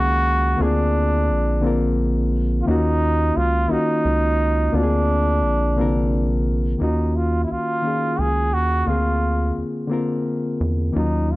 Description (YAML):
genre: slow six-eight R&B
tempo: 58 BPM (dotted quarters)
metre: 6/8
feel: straight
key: Eb dorian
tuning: A4 = 440 Hz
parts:
  - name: clear trombone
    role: melody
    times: 0.0-11.4 s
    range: D4 to Ab4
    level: -22 LUFS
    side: right 1 dB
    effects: slapback echo
  - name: reed electric piano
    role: accompaniment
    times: 0.0-11.4 s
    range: C3 to F5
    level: -22 LUFS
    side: left 2 dB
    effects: none
  - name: rubbery square bass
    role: bass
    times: 0.0-11.4 s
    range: Bb1 to Fb2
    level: -21 LUFS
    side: equal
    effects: none
room: small room ambience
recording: dry, close 1970s-style studio recording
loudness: -18 LUFS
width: side -19 dB against mid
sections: 0.0-6.8 A section; 6.8-11.4 B section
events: none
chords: 0.0 Ebm7; 0.6 Bb7; 2.7 Ebm7; 4.7 Bb7; 6.8 Ebm7; 8.9 Bb7/D